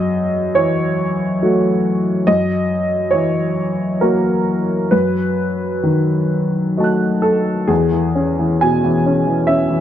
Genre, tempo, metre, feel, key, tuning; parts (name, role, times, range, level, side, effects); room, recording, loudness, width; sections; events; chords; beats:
neoclassical minimalist piano; 63-71 BPM; 3/4; rubato; E major; A4 = 440 Hz
clear upright piano; solo; 0.0-9.8 s; E2 to F#6; -14 LUFS; equal
small room ambience; dry, close 1970s-style studio recording; -14 LUFS; side -10 dB against mid
0.0-7.7 A section; 7.7-9.8 B section
0.0 F#m7; 2.3 F#7; 4.9 B7/F#; 7.7 E6
0.56 1.42 | 2.27 3.13 4.01 | 4.92 5.85 6.77 | 7.70 8.62 9.49